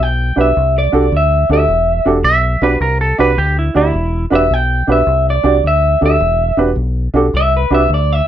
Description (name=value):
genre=electric blues shuffle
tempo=106 BPM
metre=4/4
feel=swing 66% on 8ths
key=E minor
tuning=A4 = 439 Hz
part: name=electric guitar through a small old amp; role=melody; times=0.0-8.3 s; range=B4 to G5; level=-14 LUFS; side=equal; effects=none
part: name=deep dub fingered electric bass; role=bass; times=0.0-8.2 s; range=E1 to D2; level=-16 LUFS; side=left 1 dB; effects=none
part: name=dark upright piano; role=accompaniment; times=0.4-7.8 s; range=D4 to D5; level=-14 LUFS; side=right 3 dB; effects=none
part: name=clean lap steel guitar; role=second line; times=2.2-4.2 s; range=E4 to E5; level=-16 LUFS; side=right 3 dB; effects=slapback echo
room=light reverb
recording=none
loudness=-11 LUFS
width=side -10 dB against mid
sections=0.0-8.3 A section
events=none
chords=0.0 Em9